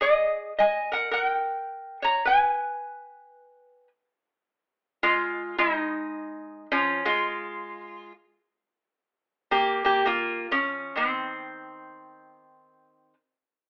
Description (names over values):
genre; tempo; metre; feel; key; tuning
hawaiian; 108 BPM; 4/4; swing 61% on 8ths; unclear; A4 = 438 Hz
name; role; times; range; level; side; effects
lap resonator guitar; solo; 0.0-13.1 s; Eb3 to A#5; -26 LUFS; equal; none
room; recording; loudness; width
moderate large studio reverb, RT60 0.9 s; band playing live in one room, telephone sound; -26 LUFS; mono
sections
0.0-4.5 A section; 4.5-13.7 B section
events
none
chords
0.0 D#sus4; 1.1 A#m6; 2.2 N.C.; 6.7 Fm; 8.9 Bb5; 11.1 N.C.